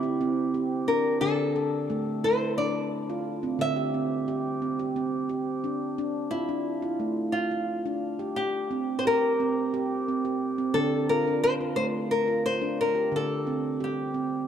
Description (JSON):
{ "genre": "world meditative", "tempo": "176 BPM (eighths)", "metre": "7/8", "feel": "straight", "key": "D minor", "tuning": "A4 = 438 Hz", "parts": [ { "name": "nylon-string guitar", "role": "melody", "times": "0.0-14.5 s", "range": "E4 to E5", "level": "-27 LUFS", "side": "left 1 dB", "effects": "none" }, { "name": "handpan", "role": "arpeggios", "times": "0.0-14.5 s", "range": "D3 to A4", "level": "-28 LUFS", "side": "right 1 dB", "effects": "none" } ], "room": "wet spring reverb, RT60 2.6 s", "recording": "none", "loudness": "-25 LUFS", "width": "side -8 dB against mid", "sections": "0.0-6.0 A section; 6.0-14.5 B section", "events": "none", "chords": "0.0 C/D; 1.2 Dm; 3.6 C/D; 6.0 Dm; 8.4 C5; 10.8 Dm; 13.1 C5/D" }